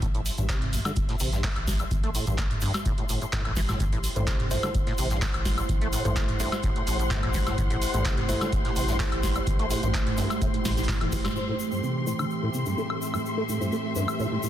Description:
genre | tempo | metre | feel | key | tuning
acid house | 127 BPM | 4/4 | straight | A dorian | A4 = 442 Hz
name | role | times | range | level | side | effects
deep acid bass | riff | 0.0-14.5 s | G2 to A3 | -32 LUFS | equal | overdrive, ensemble chorus, sidechain pumping, dub echo
round analog bass | bass | 0.0-11.3 s | E1 to A1 | -31 LUFS | equal | sidechain pumping
booming analog drum machine | drums | 0.0-14.2 s | handclaps, hi-hat, snare drum, toms, woodblock | -31 LUFS | equal | none
damped 70s drum kit | drums | 0.0-14.5 s | hi-hat, shaker, snare drum | -44 LUFS | equal | none
electronic kick drum | drums | 0.0-11.2 s | none | -28 LUFS | equal | none
tube shaker | percussion | 0.0-14.5 s | none | -41 LUFS | left 6 dB | none
dark symphonic string section | texture | 0.0-14.5 s | A3 to C6 | -34 LUFS | left 1 dB | sidechain pumping
warbly tape-like pad | sustained chords | 3.8-14.5 s | A2 to C5 | -33 LUFS | right 2 dB | chorus, built-in reverb, sidechain pumping
deep mellow chord stab | stabs | 4.2-14.1 s | A3 to C5 | -37 LUFS | left 1 dB | chorus, dub echo
mellow hollow silver concert flute | melody | 11.4-11.6 s | C5 | -40 LUFS | left 1 dB | none
room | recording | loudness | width
light reverb, studio reverb | dense, heavily limited modern master | -24 LUFS | side -11 dB against mid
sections
0.0-11.4 A section; 11.4-14.5 B section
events
fade-in on string section 0.0-11.4; drum fill 10.9-11.4; band accent 11.2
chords
0.0 Am

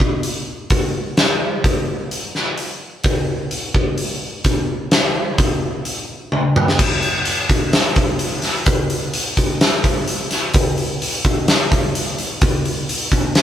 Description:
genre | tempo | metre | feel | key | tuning
rock | 128 BPM | 4/4 | straight | none | none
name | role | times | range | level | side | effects
big rock drum kit | drums | 0.0-13.4 s | crash cymbal, hi-hat, kick drum, snare drum, toms | -16 LUFS | equal | none
room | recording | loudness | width
light reverb | band playing live in one room | -16 LUFS | side -10 dB against mid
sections
0.0-6.8 A section; 6.8-13.4 B section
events
half time 0.0-6.8; drum fill 6.3-6.8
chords
none

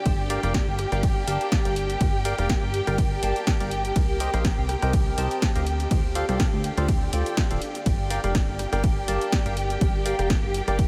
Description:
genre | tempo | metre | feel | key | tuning
piano house | 123 BPM | 4/4 | swing 55% on 16ths | G minor | A4 = 440 Hz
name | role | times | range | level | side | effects
warm studio string section | sustained chords | 0.0-10.9 s | G4 to G5 | -33 LUFS | equal | vintage 12-bit sampler grit, sidechain pumping
deep dark ambient pad | texture | 0.0-10.9 s | C4 to F5 | -37 LUFS | equal | chorus, built-in reverb, sidechain pumping
plucky analog bass | bass | 0.1-10.9 s | D1 to D2 | -30 LUFS | equal | sidechain pumping
electronic kick drum | drums | 0.1-10.9 s | none | -26 LUFS | equal | none
punchy analog drum machine | drums | 0.1-10.9 s | hi-hat, ride cymbal, rim click, snare drum | -35 LUFS | equal | none
percussive organ stab | riff | 0.3-10.8 s | F4 to A5 | -33 LUFS | equal | subtle chorus, sidechain pumping, tape echo
room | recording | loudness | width
light reverb | none | -24 LUFS | mono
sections
0.0-10.9 A section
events
none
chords
0.1 Gm7; 4.0 Cm7; 5.7 Dm7; 7.9 Gm7

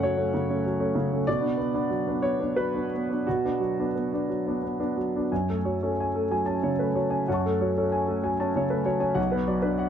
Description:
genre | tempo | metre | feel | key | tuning
neoclassical minimalist piano | 87-96 BPM | 3/4 | rubato | F# minor | A4 = 440 Hz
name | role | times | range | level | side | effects
warm grand piano | solo | 0.0-9.9 s | B1 to C#6 | -24 LUFS | equal | none
room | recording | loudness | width
light reverb | dark, warm production | -24 LUFS | side -8 dB against mid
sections
0.0-5.3 A section; 5.3-9.9 B section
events
none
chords
0.0 F#m; 1.3 Bm; 5.3 F#madd9; 9.2 Bm

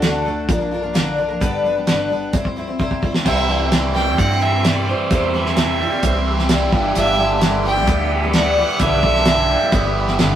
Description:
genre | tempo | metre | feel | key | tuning
folk rock and heartland rock | 130 BPM | 4/4 | straight | unclear | A4 = 441 Hz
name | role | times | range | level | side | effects
picked twelve-string acoustic guitar | accompaniment | 0.0-10.4 s | G2 to C5 | -21 LUFS | left 2 dB | none
fingered electric bass | bass | 0.0-10.4 s | G1 to G2 | -23 LUFS | equal | none
damped 70s drum kit | drums | 0.0-10.3 s | crash cymbal, hi-hat, kick drum, snare drum | -19 LUFS | right 1 dB | none
clear fiddle | melody | 3.3-10.2 s | C5 to G5 | -21 LUFS | right 3 dB | none
tonewheel organ | sustained chords | 3.3-10.4 s | G4 to C6 | -28 LUFS | right 1 dB | chorus vibrato, fast rotary speaker
biting overdriven guitar | riff | 3.3-10.4 s | G2 to C4 | -21 LUFS | right 1 dB | phaser
room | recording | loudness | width
moderate stone room reverb, RT60 1.0 s | rough rehearsal-room recording | -15 LUFS | side -10 dB against mid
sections
0.0-3.3 A section; 3.3-10.4 B section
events
drum fill 2.8-3.3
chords
0.5 Bb; 1.4 G; 2.3 C; 6.7 G6

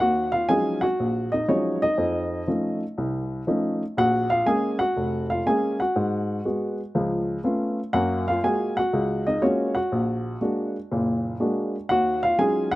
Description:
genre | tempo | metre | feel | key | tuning
solo jazz | 121 BPM | 4/4 | swing 66% on 8ths | Eb minor | A4 = 437 Hz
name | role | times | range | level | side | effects
warm upright piano | solo | 0.0-12.8 s | F1 to Ab5 | -22 LUFS | equal | slapback echo
room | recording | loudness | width
little or no reverb | recorded outdoors, with no room sound | -22 LUFS | side -17 dB against mid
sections
0.0-12.8 A section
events
none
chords
0.0 Ebm11; 2.0 F7b13; 4.0 Bbm7; 5.9 Abm7; 6.9 Dbaug7; 7.9 Gbmaj9; 9.9 Bbaug7; 11.9 Ebm11

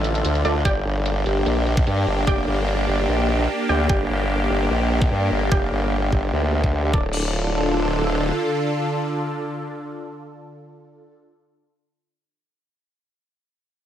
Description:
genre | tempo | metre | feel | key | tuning
heavy wobble dubstep | 148 BPM | 4/4 | half-time | D minor | A4 = 440 Hz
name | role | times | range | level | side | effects
supersaw pad | sustained chords | 0.0-11.1 s | D3 to A4 | -24 LUFS | equal | phaser, sidechain pumping
formant-sweep wobble bass | bass | 0.0-8.3 s | D1 to G2 | -21 LUFS | equal | chorus, overdrive
dubstep drum kit | drums | 0.0-7.0 s | crash cymbal, hi-hat | -34 LUFS | left 2 dB | low-pass filter on hats, small room reverb, low-pass filter on cymbals, low-pass filter on snare
orchestra-hit-like synth stab | stabs | 0.4-11.6 s | D4 to G5 | -28 LUFS | right 2 dB | built-in reverb, tape echo
electronic kick drum | drums | 0.7-7.0 s | none | -21 LUFS | equal | small room reverb
room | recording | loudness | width
light reverb, digital ambience | none | -19 LUFS | side -10 dB against mid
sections
0.0-7.1 A section; 7.1-10.4 B section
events
filter sweep on drum 0.0-7.1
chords
0.0 Dm; 0.7 Gm; 6.9 Dm

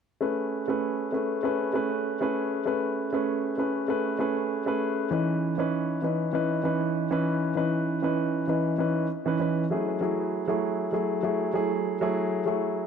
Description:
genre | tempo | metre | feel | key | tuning
chillout | 98 BPM | 4/4 | swing 54% on 16ths | unclear | A4 = 440 Hz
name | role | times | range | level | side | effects
warm grand piano | accompaniment | 0.2-12.9 s | E3 to B4 | -25 LUFS | moving between left 3 dB and right 4 dB | auto-pan, analog delay
room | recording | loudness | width
moderate plate reverb, RT60 3.5 s | echo-heavy mix | -25 LUFS | side -7 dB against mid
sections
0.2-12.9 A section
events
none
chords
0.2 Amaj9; 5.1 C#m9; 9.7 F#m9

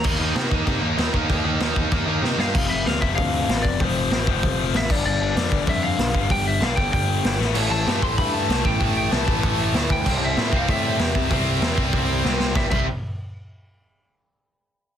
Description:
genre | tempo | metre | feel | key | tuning
punk rock | 192 BPM | 4/4 | straight | unclear | A4 = 440 Hz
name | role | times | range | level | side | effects
lightly driven lead guitar | melody | 0.0-0.1, 2.4-12.9 s | C5 to C6 | -26 LUFS | left 1 dB | none
cranked stack guitar | riff | 0.0-2.5, 7.5-12.8 s | A2 to Eb4 | -26 LUFS | right 15 dB | overdrive
tight distorted guitar | riff | 0.0-12.8 s | F2 to Eb4 | -26 LUFS | left 15 dB | distortion
fuzz picked electric bass | bass | 0.0-12.9 s | F1 to C3 | -26 LUFS | equal | overdrive
raw garage drum kit | drums | 0.0-12.8 s | crash cymbal, hi-hat, kick drum, snare drum | -23 LUFS | equal | soft clipping on kick
room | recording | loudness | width
light reverb | dense, heavily limited modern master | -19 LUFS | side -9 dB against mid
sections
0.0-2.6 A section; 2.6-12.6 B section; 12.6-13.8 C section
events
drum fill 2.2-2.6, 7.4, 12.2-12.6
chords
0.0 Eb5; 2.6 F; 4.9 G5; 7.4 A5; 10.1 C; 12.6 C5

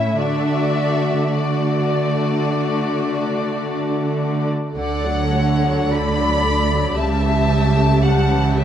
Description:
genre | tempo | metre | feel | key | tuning
classical, slow romantic movement for string orchestra | 51-57 BPM | 4/4 | rubato | D major | A4 = 440 Hz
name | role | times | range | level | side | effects
rich chamber violin section | melody | 0.0-8.6 s | D5 to B5 | -25 LUFS | left 3 dB | none
rich chamber violin section | second line | 0.0-8.6 s | E4 to F#5 | -24 LUFS | left 3 dB | none
rich chamber viola section | accompaniment | 0.0-8.6 s | C#3 to A4 | -23 LUFS | left 1 dB | none
rich chamber cello section | bass | 0.0-8.6 s | A2 to D3 | -21 LUFS | right 2 dB | none
rich chamber double bass section | bass | 4.8-8.6 s | C#2 to D2 | -21 LUFS | right 3 dB | none
room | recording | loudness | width
moderate scoring stage reverb, RT60 1.7 s | dark, warm production | -16 LUFS | side -10 dB against mid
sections
0.0-4.8 A section; 4.8-8.6 B section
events
none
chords
0.2 D; 7.0 A7/C#

